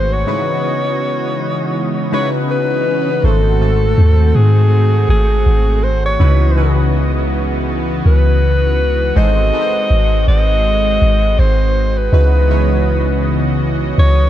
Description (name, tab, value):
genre	contemporary R&B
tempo	81 BPM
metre	4/4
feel	swing 58% on 16ths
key	C# minor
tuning	A4 = 442 Hz
part	breathy alto saxophone	melody	0.0-14.3 s	G#4 to D#5	-19 LUFS	left 1 dB	ping-pong delay
part	warm analog keys	accompaniment	0.0-14.3 s	G#2 to C#5	-20 LUFS	equal	chorus, phaser
part	lush unison pad	sustained chords	0.0-14.3 s	C#3 to D#5	-21 LUFS	equal	chorus
part	soft 808-style bass	bass	0.0-14.3 s	G#1 to G#2	-13 LUFS	equal	none
part	swell	sound effects	2.0-3.2 s	none	-27 LUFS	left 1 dB	none
room	digital ambience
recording	dark, warm production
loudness	-12 LUFS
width	side -12 dB against mid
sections	0.0-3.2 A section; 3.2-14.3 B section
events	swell 2.0-3.2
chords	0.3 C#m11; 3.2 G#7b9; 6.2 C#m11; 9.2 G#7b9; 12.1 C#m11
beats	| 0.27 1.01 1.75 2.49 | 3.23 3.98 4.72 5.46 | 6.20 6.94 7.68 8.42 | 9.16 9.90 10.64 11.38 | 12.12 12.87 13.61